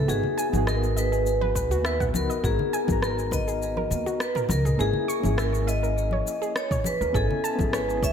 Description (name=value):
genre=sunset chillout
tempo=102 BPM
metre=4/4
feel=straight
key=G# minor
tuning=A4 = 440 Hz
part: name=vibraphone with hard mallets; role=melody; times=0.0-8.1 s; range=G#4 to E5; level=-27 LUFS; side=left 1 dB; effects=diffuse ambient delay
part: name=soft electric-piano-like synth keys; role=accompaniment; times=0.0-8.1 s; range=A#3 to G#5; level=-31 LUFS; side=moving between left 4 dB and right 6 dB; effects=chorus, tremolo, auto-pan, vintage 12-bit sampler grit, tape echo
part: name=soft round pluck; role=arpeggios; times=0.0-8.1 s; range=F#4 to C#6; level=-33 LUFS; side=right 2 dB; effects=chorus, tape echo
part: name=upright bass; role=bass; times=0.1-8.1 s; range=G#1 to D#2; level=-27 LUFS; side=equal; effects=none
part: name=deep house drum kit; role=drums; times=0.1-8.1 s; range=cabasa, rim click, toms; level=-32 LUFS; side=left 1 dB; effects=studio reverb
part: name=congas and bongos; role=percussion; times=0.2-8.1 s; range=none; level=-34 LUFS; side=left 4 dB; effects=none
part: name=electronic kick drum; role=drums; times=1.6-8.1 s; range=none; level=-28 LUFS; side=equal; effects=studio reverb
room=moderate plate reverb, RT60 2.2 s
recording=dreamy mix soaked in reverb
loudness=-22 LUFS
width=side -8 dB against mid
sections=0.0-8.1 A section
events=none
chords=0.1 Emaj9/G# (rootless); 2.4 G#m9; 4.8 A#m7b5/G#; 7.1 Amaj9/G#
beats=| 0.09 0.67 1.26 1.85 | 2.44 3.03 3.62 4.20 | 4.79 5.38 5.97 6.56 | 7.14 7.73